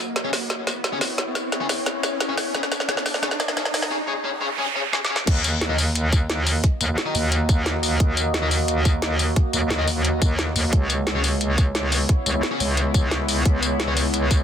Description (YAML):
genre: dark technical drum and bass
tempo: 176 BPM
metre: 4/4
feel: straight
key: Eb phrygian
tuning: A4 = 440 Hz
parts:
  - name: deep dark ambient pad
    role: sustained chords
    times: 0.0-14.4 s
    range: Bb3 to Eb5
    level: -29 LUFS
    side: equal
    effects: chorus, built-in reverb, sidechain pumping
  - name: riser and noise sweep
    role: sound effects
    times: 0.0-5.3 s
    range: none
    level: -30 LUFS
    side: right 2 dB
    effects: none
  - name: fuzz guitar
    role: stabs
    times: 0.2-13.9 s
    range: Db4 to Eb5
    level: -30 LUFS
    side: left 4 dB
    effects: distortion, ping-pong delay
  - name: drum and bass drum kit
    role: drums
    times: 0.2-14.4 s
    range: crash cymbal, hi-hat, snare drum, tambourine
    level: -24 LUFS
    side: left 1 dB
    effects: high-pass filter on snare, high-pass filter on hats, high-pass filter on perc, high-pass filter on cymbals, high-pass filter on room
  - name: metallic wobble bass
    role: bass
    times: 5.3-14.4 s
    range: Db2 to Eb2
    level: -22 LUFS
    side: equal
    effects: chorus, tube saturation, sidechain pumping
  - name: electronic kick drum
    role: drums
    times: 5.3-14.4 s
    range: none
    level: -19 LUFS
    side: equal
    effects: none
room: light reverb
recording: dense, heavily limited modern master, high-pass filter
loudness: -19 LUFS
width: side -9 dB against mid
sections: 0.0-5.3 A section; 5.3-14.4 B section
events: build-up 0.0-5.3; drum fill 0.0-3.9, 4.9-5.3; riser 0.0-3.9; noise sweep 3.9-5.3; drop 5.3-14.4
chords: 0.0 Dbm7; 5.3 Ebm; 10.7 Dbm7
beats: 0.16 0.50 0.84 | 1.18 1.52 1.86 2.21 | 2.55 2.89 3.23 3.57 | 3.91 4.25 4.59 4.93 | 5.27 5.62 5.96 6.30 | 6.64 6.98 7.32 7.66 | 8.00 8.34 8.68 9.02 | 9.37 9.71 10.05 10.39 | 10.73 11.07 11.41 11.75 | 12.09 12.43 12.77 13.12 | 13.46 13.80 14.14